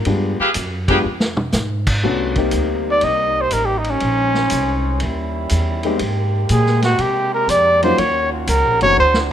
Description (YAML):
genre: jazz, big band swing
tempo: 121 BPM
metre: 4/4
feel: swing 68% on 8ths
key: C minor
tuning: A4 = 438 Hz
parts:
  - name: warm concert grand piano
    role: accompaniment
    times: 0.0-9.0 s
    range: E3 to G4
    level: -21 LUFS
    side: left 4 dB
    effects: none
  - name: upright bass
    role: bass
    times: 0.0-9.3 s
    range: Gb1 to C3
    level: -21 LUFS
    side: equal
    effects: none
  - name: vintage drum kit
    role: drums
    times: 0.0-9.3 s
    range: crash cymbal, hi-hat, kick drum, ride cymbal, snare drum, toms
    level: -25 LUFS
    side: equal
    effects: none
  - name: clear trumpet section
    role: stabs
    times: 0.4-1.0 s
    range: G4 to G5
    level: -20 LUFS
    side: equal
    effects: none
  - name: bright trombone section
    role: sustained chords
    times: 2.0-9.3 s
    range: C3 to C5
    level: -26 LUFS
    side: right 1 dB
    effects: none
  - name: breathy trumpet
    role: melody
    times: 2.9-9.2 s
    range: Db4 to Eb5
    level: -16 LUFS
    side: right 1 dB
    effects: none
room: light reverb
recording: minimal, uncompressed stereo recording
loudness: -15 LUFS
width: side -10 dB against mid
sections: 0.0-2.0 A section; 2.0-9.3 B section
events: drum fill 1.0-1.5, 9.0-9.3; trumpet solo 2.0-9.3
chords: 0.0 G7b9; 2.0 Cm7; 4.0 Bbm11; 5.0 Eb7b9; 6.0 Abmaj9; 8.0 Ebm7